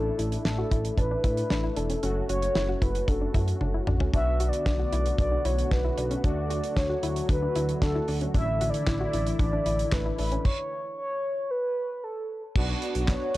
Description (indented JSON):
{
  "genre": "synth-pop",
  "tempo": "114 BPM",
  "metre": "4/4",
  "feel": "straight",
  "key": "B minor",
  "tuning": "A4 = 440 Hz",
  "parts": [
    { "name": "mellow horn-like synth lead", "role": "melody", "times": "0.0-13.4 s", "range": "A4 to E5", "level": "-30 LUFS", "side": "equal", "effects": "chorus, tape echo" },
    { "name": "analog synth brass", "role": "accompaniment", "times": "0.0-13.4 s", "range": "A3 to F#4", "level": "-34 LUFS", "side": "left 1 dB", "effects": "chorus" },
    { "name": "soft round pluck", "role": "arpeggios", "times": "0.0-10.4 s", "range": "C#4 to F#4", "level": "-36 LUFS", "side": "left 2 dB", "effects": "chorus, tape echo" },
    { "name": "smooth gliding synth bass", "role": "bass", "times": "0.0-13.4 s", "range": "E1 to A2", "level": "-29 LUFS", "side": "equal", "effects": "none" },
    { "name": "damped 70s drum kit", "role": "drums", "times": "0.2-13.4 s", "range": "crash cymbal, handclaps, hi-hat, kick drum, snare drum, toms", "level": "-27 LUFS", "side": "equal", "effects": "none" },
    { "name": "phased analog pad", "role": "sustained chords", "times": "4.1-10.4 s", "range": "D3 to F#4", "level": "-36 LUFS", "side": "equal", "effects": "phaser, chorus" }
  ],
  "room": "small room ambience",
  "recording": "dry, gritty hardware recording, cassette tape",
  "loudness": "-24 LUFS",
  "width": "side -17 dB against mid",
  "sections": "0.0-4.1 A section; 4.1-12.6 B section",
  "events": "drum fill 3.6-4.1; stop 10.5-12.6",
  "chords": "0.0 Asus4; 2.0 F#m; 4.1 Bm7; 6.2 D; 8.3 Asus4; 10.5 N.C.; 12.6 Bm"
}